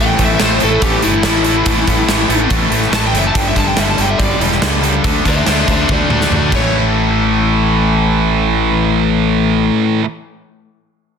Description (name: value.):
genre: hard rock.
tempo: 142 BPM.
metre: 4/4.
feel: straight.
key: unclear.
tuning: A4 = 440 Hz.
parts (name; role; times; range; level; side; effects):
lead guitar through a small cranked amp; melody; 0.0-6.7 s; E4 to A5; -18 LUFS; left 2 dB; overdrive, slapback echo.
crunchy overdriven guitar; riff; 0.0-10.0 s; G2 to D4; -18 LUFS; left 13 dB; spring reverb.
heavy high-gain guitar; riff; 0.0-10.0 s; G2 to D4; -17 LUFS; right 12 dB; distortion.
growling fingered electric bass; bass; 0.0-9.7 s; E1 to D2; -18 LUFS; equal; overdrive.
gated 80s drum kit; drums; 0.2-6.6 s; crash cymbal, hi-hat, kick drum, snare drum, toms; -17 LUFS; right 1 dB; soft clipping on snare.
room: studio reverb.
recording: dense, heavily limited modern master.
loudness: -11 LUFS.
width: side -7 dB against mid.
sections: 0.0-6.7 A section; 6.7-10.1 B section.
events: lead electric guitar solo 0.0-6.7; drum fill 5.9-6.7.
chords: 0.0 A5; 3.3 G5; 5.0 D; 6.5 A5.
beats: 0.39 0.81 1.24 | 1.66 2.08 2.50 2.92 | 3.35 3.77 4.19 4.61 | 5.04 5.46 5.88 6.30 | 6.73 7.15 7.57 7.99 | 8.41 8.84 9.26 9.68.